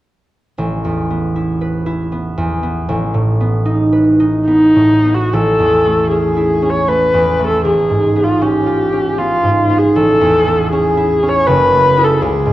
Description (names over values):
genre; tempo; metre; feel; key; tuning
classical, impressionist duo for viola and harp; 78 BPM; 3/4; rubato; A lydian; A4 = 440 Hz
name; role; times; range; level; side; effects
concert harp; accompaniment; 0.6-12.5 s; F#1 to B4; -14 LUFS; right 1 dB; none
warm viola; melody; 4.5-12.5 s; D#4 to C#5; -13 LUFS; left 1 dB; none
room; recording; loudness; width
wet recital hall reverb, RT60 1.7 s; worn, warbling old tape, cassette tape, warbly pitch drift; -11 LUFS; side -15 dB against mid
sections
0.6-5.3 A section; 5.3-12.5 B section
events
none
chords
0.6 Asus2; 2.9 B7/A; 5.3 A; 7.7 C#7#11/A; 10.0 Aadd9; 11.5 F#m9